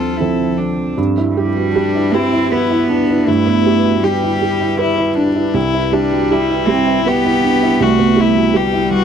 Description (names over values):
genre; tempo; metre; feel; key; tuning
neoclassical piano and strings; 79 BPM; 3/4; rubato; G major; A4 = 440 Hz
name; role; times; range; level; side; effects
warm violin; melody; 0.0-9.0 s; D4 to A4; -18 LUFS; left 8 dB; none
warm cello; second line; 0.0-9.0 s; G3 to F4; -18 LUFS; right 5 dB; none
felt-muted upright piano; accompaniment; 0.0-9.0 s; C2 to B4; -17 LUFS; right 4 dB; none
glassy FM pad; sustained chords; 0.0-9.0 s; F3 to B4; -23 LUFS; left 4 dB; ensemble chorus, built-in reverb
room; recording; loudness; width
little or no reverb; dry, close 1970s-style studio recording; -12 LUFS; side -8 dB against mid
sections
1.0-9.0 A section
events
none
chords
0.0 Dm7; 1.0 G6; 5.5 Cmaj7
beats
0.19 | 0.98 1.75 2.52 | 3.28 4.03 4.79 | 5.55 6.31 7.07 | 7.82 8.55